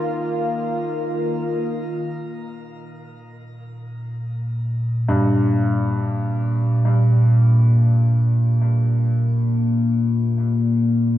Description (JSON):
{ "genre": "dark ambient drone", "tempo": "free time", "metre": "none", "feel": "none", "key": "unclear", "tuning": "A4 = 439 Hz", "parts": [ { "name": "sweeping resonant pad", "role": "sustained chords", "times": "0.0-1.6 s", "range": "Eb3 to F4", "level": "-24 LUFS", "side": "left 1 dB", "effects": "chorus, shimmer reverb" }, { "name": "analog drone", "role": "drone", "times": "3.6-11.2 s", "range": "Bb2 to C4", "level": "-17 LUFS", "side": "equal", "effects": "chorus" }, { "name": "clear grand piano", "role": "arpeggios", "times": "5.1-11.2 s", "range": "G2", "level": "-26 LUFS", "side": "equal", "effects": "tape echo, shimmer reverb" } ], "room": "wet echo chamber reverb, RT60 2.1 s", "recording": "echo-heavy mix", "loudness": "-17 LUFS", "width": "side -13 dB against mid", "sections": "0.0-1.6 A section; 1.6-11.2 B section", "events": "filter sweep on synth drone 1.6-11.2", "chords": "0.0 Eb5; 1.6 Gm" }